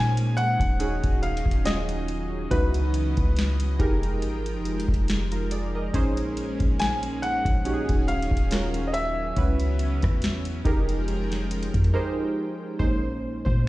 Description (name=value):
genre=contemporary R&B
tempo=70 BPM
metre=4/4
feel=swing 54% on 16ths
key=Bb minor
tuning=A4 = 440 Hz
part: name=clear grand piano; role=melody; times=0.0-10.2 s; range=Cb5 to Ab5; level=-29 LUFS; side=left 1 dB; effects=ping-pong delay
part: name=warm analog keys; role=accompaniment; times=0.0-13.7 s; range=Ab3 to Eb5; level=-30 LUFS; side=right 2 dB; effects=chorus
part: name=lush unison pad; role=sustained chords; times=0.0-12.8 s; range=Db3 to G5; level=-34 LUFS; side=left 1 dB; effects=chorus, sidechain pumping
part: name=warm 808-style bass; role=bass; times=0.0-13.7 s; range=Eb1 to Bb2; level=-26 LUFS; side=equal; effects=none
part: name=booming analog drum machine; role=drums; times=0.2-13.6 s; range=hi-hat, kick drum, rim click, snare drum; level=-25 LUFS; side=equal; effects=overdrive, vintage 12-bit sampler grit
room=little or no reverb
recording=played on a big sound system in a bare room, stone room reverb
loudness=-22 LUFS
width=side -17 dB against mid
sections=0.0-12.8 A section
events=break 11.9-12.8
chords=0.0 Bbm11; 0.8 Ebm11; 2.5 Dbm11; 3.8 Fm11; 5.9 Bbm11; 7.7 Ebm11; 9.4 Dbm7; 10.7 Fm11; 12.8 Bbm7